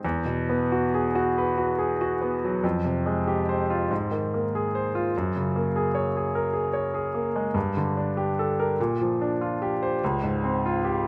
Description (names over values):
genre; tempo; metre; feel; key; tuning
classical, impressionist solo piano; 48 BPM (dotted quarters); 6/8; rubato; unclear; A4 = 439 Hz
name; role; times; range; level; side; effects
clear concert grand piano; solo; 0.0-11.1 s; Db2 to Db5; -26 LUFS; equal; none
room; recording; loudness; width
moderate concert hall reverb, RT60 2.1 s; close, detailed microphones; -26 LUFS; mono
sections
0.0-11.1 A section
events
none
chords
0.0 Eadd9; 2.6 Fmadd9; 3.9 Ab69; 5.1 Gbadd9; 7.6 Gmadd9; 8.8 Bb69; 10.0 Dbmaj7#11